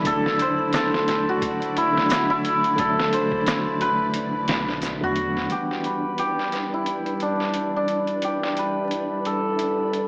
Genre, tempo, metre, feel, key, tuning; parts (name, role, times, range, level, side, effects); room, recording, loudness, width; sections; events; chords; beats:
trip hop; 88 BPM; 4/4; swing 57% on 16ths; E minor; A4 = 440 Hz
hammered dulcimer; melody; 0.0-10.1 s; D4 to C5; -25 LUFS; equal; vintage 12-bit sampler grit, tape echo
tine electric piano; accompaniment; 0.0-10.1 s; D3 to D4; -32 LUFS; equal; tremolo, low-pass filter
string machine, cellos; sustained chords; 0.0-10.1 s; G3 to E5; -35 LUFS; equal; ensemble chorus, vintage 12-bit sampler grit
soft dub sub bass; bass; 0.0-5.5 s; E1 to E2; -44 LUFS; equal; tube saturation
trip hop sampler-style drum kit; drums; 0.0-10.1 s; hi-hat, kick drum, snare drum; -31 LUFS; equal; high-pass filter on hats, small room ambience, high-pass filter on kick, high-pass filter on snare
flickering grainy texture; texture; 0.0-10.1 s; D4 to B5; -36 LUFS; equal; built-in reverb
tube shaker; percussion; 0.7-5.0 s; -45 LUFS; equal
little or no reverb; dry, gritty hardware recording, vinyl crackle, small speaker sound; -23 LUFS; mono
0.0-5.5 A section; 5.5-10.1 B section
filter sweep on tine electric piano 5.5-10.1
0.1 D/E; 5.5 Em7
| 0.05 0.73 1.41 2.10 | 2.78 3.46 4.14 4.82 | 5.50 6.19 6.87 7.55 | 8.23 8.91 9.60